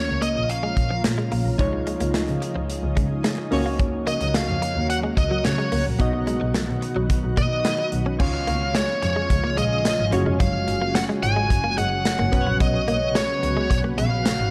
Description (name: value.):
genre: 1980s-style pop.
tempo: 109 BPM.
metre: 4/4.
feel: straight.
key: Db mixolydian.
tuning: A4 = 440 Hz.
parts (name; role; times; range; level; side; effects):
bluesy overdriven lead guitar; melody; 0.0-14.5 s; Db5 to Ab5; -28 LUFS; equal; distortion.
glassy digital keys; accompaniment; 0.0-14.5 s; Ab3 to Eb5; -31 LUFS; equal; chorus, phaser.
shimmering ambient pad; sustained chords; 0.3-14.5 s; Db3 to Gb4; -33 LUFS; equal; chorus, built-in reverb.
warm double bass; bass; 0.1-14.5 s; F1 to Db3; -28 LUFS; equal; none.
direct-recorded clean electric guitar; riff; 0.2-14.3 s; F3 to Db4; -33 LUFS; equal; analog chorus.
modern studio drum kit; drums; 0.2-14.4 s; crash cymbal, hi-hat, kick drum, snare drum, tambourine; -27 LUFS; equal; none.
room: light reverb, studio reverb.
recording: dark, warm production.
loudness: -22 LUFS.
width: mono.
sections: 0.0-8.2 A section; 8.2-14.5 B section.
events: none.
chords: 0.0 Bbm; 1.6 Dbadd9; 3.5 Gb/Db; 6.0 Cb; 8.2 Db; 10.1 Gbsus2; 12.3 Cbsus2.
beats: 0.49 1.04 | 1.59 2.15 2.69 3.25 | 3.80 4.35 4.90 5.45 | 6.00 6.55 7.10 7.65 | 8.20 8.75 9.30 9.85 | 10.40 10.95 11.50 12.05 | 12.60 13.15 13.70 14.26.